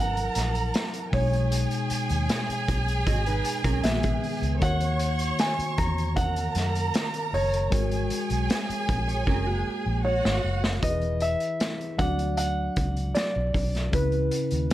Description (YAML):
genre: lush 1970s-style soul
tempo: 77 BPM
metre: 4/4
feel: straight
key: unclear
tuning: A4 = 435 Hz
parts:
  - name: warm concert grand piano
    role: melody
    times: 0.0-14.7 s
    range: B4 to A#5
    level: -30 LUFS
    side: equal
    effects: none
  - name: warm studio violin section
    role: second line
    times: 0.0-10.8 s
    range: F#4 to C#6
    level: -31 LUFS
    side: right 2 dB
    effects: none
  - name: tine electric piano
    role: accompaniment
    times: 0.0-14.7 s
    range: B2 to D5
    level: -31 LUFS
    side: left 2 dB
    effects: phaser
  - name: vintage muted fingered electric bass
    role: bass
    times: 0.0-14.7 s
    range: E1 to F#2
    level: -28 LUFS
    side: equal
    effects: none
  - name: vintage drum kit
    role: drums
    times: 0.2-14.7 s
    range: hi-hat, kick drum, snare drum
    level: -29 LUFS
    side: equal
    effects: none
  - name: mellow electric guitar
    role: riff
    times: 3.1-10.6 s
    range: A#3 to D#5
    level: -33 LUFS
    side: right 7 dB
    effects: analog chorus
room: little or no reverb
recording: none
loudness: -23 LUFS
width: side -14 dB against mid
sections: 0.0-10.8 A section; 10.8-14.7 B section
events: drum fill 9.3-10.8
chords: 0.0 F#9sus4; 1.1 B69; 4.6 D#m7; 7.7 G#9sus4; 10.8 E; 12.0 Dmaj7; 13.9 C#m7